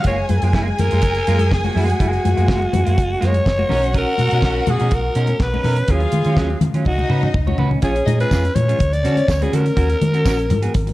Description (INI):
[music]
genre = disco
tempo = 123 BPM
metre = 4/4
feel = straight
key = F# major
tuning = A4 = 436 Hz
[part]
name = breathy alto saxophone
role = melody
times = 0.0-10.9 s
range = F#4 to D5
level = -22 LUFS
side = equal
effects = none
[part]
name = warm symphonic violin section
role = second line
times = 0.0-9.5 s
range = C#4 to G#5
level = -25 LUFS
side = left 1 dB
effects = none
[part]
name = damped 70s drum kit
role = drums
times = 0.0-10.9 s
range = handclaps, hi-hat, kick drum, snare drum, toms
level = -21 LUFS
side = equal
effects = none
[part]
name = congas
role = percussion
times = 0.0-10.9 s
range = none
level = -27 LUFS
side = left 4 dB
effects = none
[part]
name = clean electric guitar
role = accompaniment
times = 0.1-10.9 s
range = F#3 to C#5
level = -26 LUFS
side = right 3 dB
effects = lush chorus
[part]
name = hollow-body short-scale fingered electric bass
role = bass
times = 0.1-10.9 s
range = F#1 to D#3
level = -19 LUFS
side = equal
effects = none
[part]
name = tambourine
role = percussion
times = 8.3-10.4 s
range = none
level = -38 LUFS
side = right 11 dB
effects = none
[sound]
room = light reverb, studio reverb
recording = dark, warm production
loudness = -15 LUFS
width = side -17 dB against mid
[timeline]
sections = 0.0-7.8 A section; 7.8-10.9 B section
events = drum fill 6.9-7.8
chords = 0.1 F#maj9; 3.7 Bmaj9; 5.9 D#m9; 6.9 C#7sus4; 7.8 A#m7; 8.8 Dmaj7; 9.8 D#m7